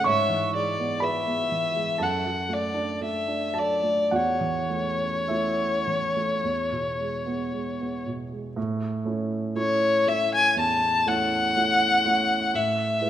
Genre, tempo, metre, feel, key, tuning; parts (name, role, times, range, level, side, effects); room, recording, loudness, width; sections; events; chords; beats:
classical, romantic duo for violin and grand piano; 51-63 BPM; 4/4; rubato; A major; A4 = 439 Hz
warm violin; melody; 0.0-13.1 s; C#5 to A5; -24 LUFS; left 2 dB
warm grand piano; accompaniment; 0.0-13.1 s; E2 to C#6; -27 LUFS; right 3 dB
wet recital hall reverb, RT60 1.6 s; -22 LUFS; side -11 dB against mid
0.0-8.6 A section; 8.6-13.1 B section
0.1 E/G#; 2.0 D/F#; 4.1 A/E; 6.4 E; 8.6 A; 12.5 E/A
| 0.08 1.04 2.01 3.04 | 4.14 5.31 6.44 7.52 | 8.56 9.56 10.57 11.55 | 12.53